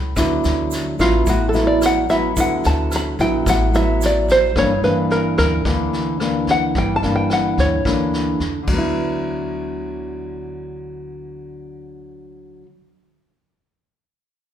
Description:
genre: bossa nova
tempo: 109 BPM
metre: 4/4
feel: straight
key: D major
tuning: A4 = 440 Hz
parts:
  - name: nylon-string guitar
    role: accompaniment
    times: 0.0-12.7 s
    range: G2 to E4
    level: -20 LUFS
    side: equal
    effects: none
  - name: upright bass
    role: bass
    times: 0.0-12.6 s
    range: G1 to E2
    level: -24 LUFS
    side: equal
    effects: none
  - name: vintage brush drum kit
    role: drums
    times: 0.2-8.8 s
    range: crash cymbal, kick drum, rim click, snare drum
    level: -26 LUFS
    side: equal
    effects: none
  - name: egg shaker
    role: percussion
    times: 0.2-4.6 s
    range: none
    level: -34 LUFS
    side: right 8 dB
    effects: none
  - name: open-back banjo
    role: melody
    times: 1.0-8.1 s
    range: F4 to B5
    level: -19 LUFS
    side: left 1 dB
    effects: none
room: moderate recital hall reverb, RT60 1.3 s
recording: recorded in a church or concert hall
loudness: -16 LUFS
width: side -10 dB against mid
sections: 0.2-8.9 A section; 8.9-11.2 B section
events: five-string banjo solo 0.2-8.9; drum fill 8.7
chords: 0.2 D69; 4.6 Gm6; 8.7 D69

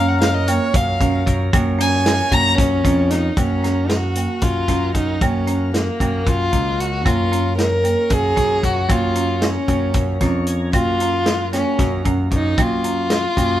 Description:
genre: progressive instrumental, band music in an uneven meter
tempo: 228 BPM (eighths)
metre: 7/8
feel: straight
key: F# major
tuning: A4 = 440 Hz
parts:
  - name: dark violin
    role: melody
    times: 0.0-13.6 s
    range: A#3 to A#5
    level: -20 LUFS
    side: left 1 dB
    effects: none
  - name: electric guitar at the edge of break-up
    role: second line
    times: 0.0-3.1 s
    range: A#4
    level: -26 LUFS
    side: left 6 dB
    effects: none
  - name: tonewheel organ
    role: accompaniment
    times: 0.0-12.6 s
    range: F#3 to G#5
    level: -29 LUFS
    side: equal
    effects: slow rotary speaker
  - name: folk marimba with hard mallets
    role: arpeggios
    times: 0.0-13.6 s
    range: A#3 to C#4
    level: -25 LUFS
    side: right 4 dB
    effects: none
  - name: modern bright picked electric bass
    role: bass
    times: 0.0-13.6 s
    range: C#2 to F#2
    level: -21 LUFS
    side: equal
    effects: none
  - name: warm soul drum kit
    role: drums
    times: 0.2-13.5 s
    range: hi-hat, kick drum, snare drum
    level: -21 LUFS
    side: equal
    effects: none
room: moderate studio reverb, RT60 0.8 s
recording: band playing live in one room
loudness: -16 LUFS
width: side -12 dB against mid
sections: 0.0-3.4 A section; 3.4-13.6 B section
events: violin solo 0.0-3.4; tonewheel organ fill 10.0-10.7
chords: 0.0 A#m/F#; 3.4 F#maj7; 7.1 A#m/F#; 10.7 F#maj7

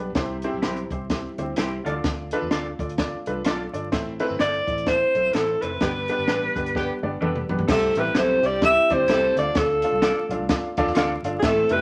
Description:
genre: uptempo 1960s-style soul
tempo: 128 BPM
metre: 4/4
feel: swing 60% on 8ths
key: C major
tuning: A4 = 440 Hz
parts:
  - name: warm upright piano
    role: accompaniment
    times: 0.0-11.8 s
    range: G2 to F5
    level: -30 LUFS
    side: equal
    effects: none
  - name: percussive tonewheel organ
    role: sustained chords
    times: 0.0-11.8 s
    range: G3 to F4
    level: -38 LUFS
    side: equal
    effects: none
  - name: vintage muted fingered electric bass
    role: bass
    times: 0.0-11.8 s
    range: F1 to E2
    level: -36 LUFS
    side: equal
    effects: none
  - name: compact cocktail drum kit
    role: drums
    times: 0.1-11.8 s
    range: crash cymbal, hi-hat, kick drum, snare drum, toms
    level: -28 LUFS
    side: equal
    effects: none
  - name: electric guitar through a small old amp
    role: stabs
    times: 0.6-11.1 s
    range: D4 to D5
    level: -35 LUFS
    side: equal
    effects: none
  - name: breathy alto saxophone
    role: melody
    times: 4.4-11.8 s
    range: Ab4 to E5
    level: -23 LUFS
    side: equal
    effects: none
  - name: warm horn section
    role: second line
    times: 5.8-11.8 s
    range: D3 to A4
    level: -31 LUFS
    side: equal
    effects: none
  - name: vibraphone with soft mallets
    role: second line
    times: 7.7-11.8 s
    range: Ab3 to E4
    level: -37 LUFS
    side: equal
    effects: none
room: moderate studio reverb, RT60 0.6 s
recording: vinyl crackle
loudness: -23 LUFS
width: mono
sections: 0.0-7.7 A section; 7.7-11.8 B section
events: band accent 5.8-7.7; drum fill 6.7-7.7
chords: 0.2 C; 1.8 Dm; 3.9 Am; 5.8 G; 7.7 C; 9.3 Dm

